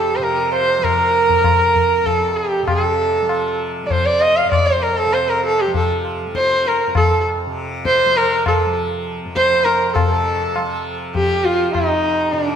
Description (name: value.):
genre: indian classical, Hindustani.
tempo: 99 BPM.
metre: 3/4.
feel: straight.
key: F raga khamaj.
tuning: A4 = 440 Hz.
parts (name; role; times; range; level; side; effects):
warm sarangi; melody; 0.0-12.6 s; D4 to F5; -16 LUFS; equal; none.
hand-pumped harmonium; second line; 0.0-12.6 s; D4 to Eb5; -26 LUFS; right 5 dB; none.
tanpura; drone; 0.0-12.6 s; F2 to F3; -27 LUFS; right 1 dB; none.
tabla; percussion; 0.2-12.6 s; none; -22 LUFS; left 3 dB; none.
room: wet recital hall reverb, RT60 1.7 s.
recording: none.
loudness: -15 LUFS.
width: side -8 dB against mid.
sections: 0.0-10.0 A section; 10.0-12.6 B section.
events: speeding up 0.0-12.6.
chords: none.